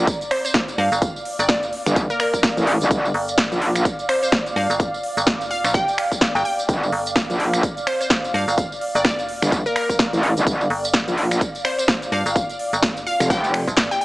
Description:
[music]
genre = bass house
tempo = 127 BPM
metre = 4/4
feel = swing 58% on 16ths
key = G minor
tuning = A4 = 441 Hz
[part]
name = metallic wobble bass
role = bass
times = 0.0-3.8, 6.7-13.7 s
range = F1 to Bb1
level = -19 LUFS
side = equal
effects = chorus, overdrive, sidechain pumping
[part]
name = granular cloud pad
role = texture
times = 0.0-14.0 s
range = D5 to F5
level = -27 LUFS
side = right 1 dB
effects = built-in reverb, sidechain pumping
[part]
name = big-room dance drum kit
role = drums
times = 0.1-14.0 s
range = finger snaps, handclaps, hi-hat, snare drum, tambourine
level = -23 LUFS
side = equal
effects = none
[part]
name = electronic kick drum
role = drums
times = 0.1-13.9 s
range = none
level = -23 LUFS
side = equal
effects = none
[part]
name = glassy wavetable pluck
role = melody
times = 0.3-14.0 s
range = Bb4 to G5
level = -24 LUFS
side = equal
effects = chorus
[part]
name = metallic FM bass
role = bass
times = 0.8-13.9 s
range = G1 to G2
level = -24 LUFS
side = equal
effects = tube saturation, sidechain pumping
[sound]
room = light reverb, digital ambience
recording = small speaker sound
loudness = -18 LUFS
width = side -20 dB against mid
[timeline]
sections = 0.0-14.0 A section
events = drum fill 13.8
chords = 0.0 G5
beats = 0.07 0.55 | 1.02 1.49 1.96 2.44 | 2.91 3.38 3.85 4.33 | 4.80 5.27 5.74 6.21 | 6.69 7.16 7.63 8.11 | 8.58 9.05 9.52 9.99 | 10.47 10.94 11.41 11.88 | 12.36 12.83 13.30 13.77

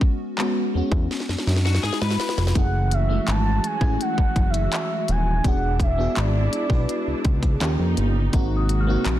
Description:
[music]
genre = contemporary R&B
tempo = 83 BPM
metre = 4/4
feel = straight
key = F# minor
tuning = A4 = 440 Hz
[part]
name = FM electric piano with soft pad layer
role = accompaniment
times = 0.0-9.2 s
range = G#3 to B4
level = -27 LUFS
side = equal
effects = chorus, tremolo
[part]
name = trap drum kit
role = drums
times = 0.0-9.2 s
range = handclaps, hi-hat, kick drum, snare drum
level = -23 LUFS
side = equal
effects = none
[part]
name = fat analog bass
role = bass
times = 0.7-9.2 s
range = D#1 to G#2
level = -22 LUFS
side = equal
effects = none
[part]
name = clean electric guitar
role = arpeggios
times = 1.6-2.5 s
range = F#4 to B4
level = -29 LUFS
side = left 8 dB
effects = ensemble chorus
[part]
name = warm studio string section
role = sustained chords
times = 2.5-9.2 s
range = B#2 to F#4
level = -31 LUFS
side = equal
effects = sidechain pumping
[part]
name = gliding portamento lead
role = melody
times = 2.6-7.6 s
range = D5 to A5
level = -27 LUFS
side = right 1 dB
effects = chorus, ping-pong delay
[part]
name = worn celesta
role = texture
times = 8.3-9.2 s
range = A#5 to E#6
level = -34 LUFS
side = left 5 dB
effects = ping-pong delay
[sound]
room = digital ambience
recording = dense, heavily limited modern master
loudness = -19 LUFS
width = side -13 dB against mid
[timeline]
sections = 0.0-2.6 A section; 2.6-9.2 B section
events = drum fill 1.1-2.6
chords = 0.0 C#7sus4; 2.6 F#m7; 5.4 E7; 7.6 D#7; 8.3 G#7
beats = 0.38 1.10 1.83 | 2.55 3.27 4.00 4.72 | 5.44 6.17 6.89 7.61 | 8.33 9.06

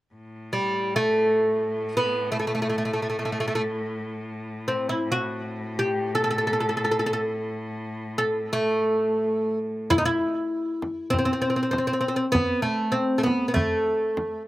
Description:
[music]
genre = Arabic maqam ensemble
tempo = free time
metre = none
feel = none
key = A minor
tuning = A4 = 439 Hz
[part]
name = bright cello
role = drone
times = 0.1-10.0 s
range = A2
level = -34 LUFS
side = left 1 dB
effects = none
[part]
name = oud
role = melody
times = 0.5-14.4 s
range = G3 to A4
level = -23 LUFS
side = equal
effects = none
[part]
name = frame drum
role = percussion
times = 9.9-14.3 s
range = none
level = -29 LUFS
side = equal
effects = none
[sound]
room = little or no reverb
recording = recorded outdoors, with no room sound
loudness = -23 LUFS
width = side -16 dB against mid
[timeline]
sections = 0.1-9.9 A section; 9.9-14.5 B section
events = none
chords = none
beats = free time

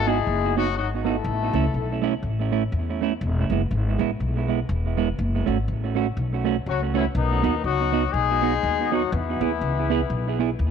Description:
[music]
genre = ska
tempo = 122 BPM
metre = 4/4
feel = swing 58% on 8ths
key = E major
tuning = A4 = 437 Hz
[part]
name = dark horn section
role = melody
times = 0.0-2.0, 6.7-10.6 s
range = D#3 to A4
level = -25 LUFS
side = left 10 dB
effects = none
[part]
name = upright bass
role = bass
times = 0.0-10.7 s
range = E1 to E2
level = -25 LUFS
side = left 1 dB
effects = none
[part]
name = semi-hollow electric guitar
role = accompaniment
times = 0.1-10.5 s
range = G#3 to G#4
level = -26 LUFS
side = right 11 dB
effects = tape echo
[sound]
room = light reverb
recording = 1960s-style stereo with parts hard left and right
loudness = -21 LUFS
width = side -7 dB against mid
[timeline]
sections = 0.0-10.7 A section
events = none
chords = 0.0 B; 1.3 A; 3.2 E; 5.2 F#m; 7.2 B; 9.1 E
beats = 0.28 0.77 | 1.26 1.75 2.24 2.73 | 3.22 3.71 4.21 4.70 | 5.19 5.68 6.17 6.66 | 7.15 7.65 8.14 8.63 | 9.12 9.61 10.10 10.60

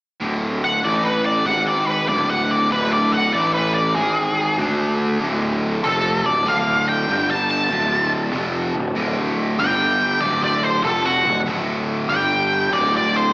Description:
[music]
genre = rock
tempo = 96 BPM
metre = 4/4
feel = swing 68% on 8ths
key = unclear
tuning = A4 = 439 Hz
[part]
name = cranked stack guitar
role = riff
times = 0.2-13.3 s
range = D2 to D4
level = -23 LUFS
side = equal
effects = overdrive, slapback echo
[part]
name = fuzz picked electric bass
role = bass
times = 0.2-13.3 s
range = D1 to D2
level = -23 LUFS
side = equal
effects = overdrive
[part]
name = octave-fuzz lead guitar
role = melody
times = 0.6-13.3 s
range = F#4 to A5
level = -19 LUFS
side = equal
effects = wah, distortion, analog delay
[sound]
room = light reverb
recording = live gig heard through the venue's PA, recital hall reverb, small speaker sound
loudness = -17 LUFS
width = side -24 dB against mid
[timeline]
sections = 0.2-5.2 A section; 5.2-13.3 B section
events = none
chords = 0.2 D5; 0.8 A5; 1.5 G#5; 2.1 D5; 3.3 A5; 4.0 G#5; 4.6 D5; 7.1 G5; 7.7 D5; 9.6 G5; 10.2 D5; 12.1 G5; 12.7 D5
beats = | 0.20 0.83 1.45 2.08 | 2.70 3.33 3.96 4.58 | 5.21 5.83 6.46 7.09 | 7.71 8.34 8.96 9.59 | 10.22 10.84 11.47 12.10 | 12.72

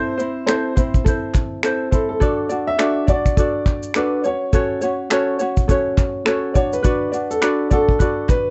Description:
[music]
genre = acoustic pop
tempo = 104 BPM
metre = 4/4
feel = swing 60% on 16ths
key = D major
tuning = A4 = 440 Hz
[part]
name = clear upright piano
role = melody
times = 0.0-8.5 s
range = A4 to E5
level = -25 LUFS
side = equal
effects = none
[part]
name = ukulele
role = accompaniment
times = 0.0-8.5 s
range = C4 to D5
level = -23 LUFS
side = equal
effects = none
[part]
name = unplugged drum kit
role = drums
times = 0.2-8.5 s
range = finger snaps, kick drum, shaker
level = -21 LUFS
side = equal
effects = none
[part]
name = group handclap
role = percussion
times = 0.5-8.5 s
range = none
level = -33 LUFS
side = equal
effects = none
[sound]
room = light reverb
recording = dark, warm production, nothing above 8.0 kHz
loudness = -19 LUFS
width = mono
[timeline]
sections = 0.0-8.5 A section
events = none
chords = 0.0 Am; 2.2 D; 4.2 F#m; 6.6 Bm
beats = 0.48 1.06 1.64 | 2.22 2.80 3.38 3.96 | 4.53 5.11 5.69 6.27 | 6.85 7.43 8.00

